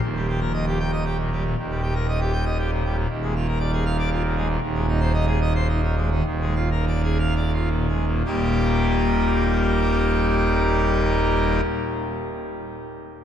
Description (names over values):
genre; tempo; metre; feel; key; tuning
classical, organ toccata; 79-120 BPM; 3/4; straight; Eb major; A4 = 440 Hz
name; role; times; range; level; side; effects
pipe organ, full organ; solo; 0.0-11.6 s; Eb1 to G5; -20 LUFS; equal; none
room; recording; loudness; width
wet cathedral reverb, RT60 6.2 s; dark, warm production; -20 LUFS; side -9 dB against mid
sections
0.0-1.6 A section; 1.6-8.3 B section; 8.3-12.8 C section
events
slowing down 3.9-8.3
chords
0.0 Eb; 3.1 Bb7/Eb; 4.6 Ab/Eb; 6.2 Bb7/Eb; 8.3 Eb